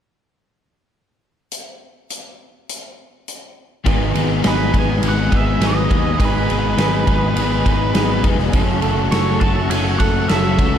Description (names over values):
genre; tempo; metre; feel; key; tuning
rock, shoegaze and dream pop; 103 BPM; 4/4; straight; unclear; A4 = 440 Hz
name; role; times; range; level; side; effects
huge arena drum kit; drums; 1.5-10.7 s; hi-hat, kick drum, ride cymbal, snare drum; -20 LUFS; equal; none
crunchy overdriven guitar; riff; 3.8-10.8 s; F#2 to D#4; -22 LUFS; left 10 dB; ensemble chorus
sweeping resonant pad; sustained chords; 3.9-10.8 s; A4 to D#6; -29 LUFS; equal; chorus
electric guitar through a small old amp; arpeggios; 3.9-10.8 s; F#3 to A4; -29 LUFS; left 3 dB; none
biting overdriven guitar; riff; 3.9-10.8 s; F#2 to A4; -24 LUFS; right 13 dB; reverse reverb
modern bright picked electric bass; bass; 3.9-10.8 s; F1 to D#2; -21 LUFS; equal; none
octave-fuzz lead guitar; melody; 4.5-10.8 s; B4 to A5; -24 LUFS; right 3 dB; distortion, tape echo
room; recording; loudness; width
small room ambience; dark, warm production; -14 LUFS; side -9 dB against mid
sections
1.5-3.9 A section; 3.9-10.8 B section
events
none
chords
1.5 N.C.; 3.9 G#m; 8.5 F#m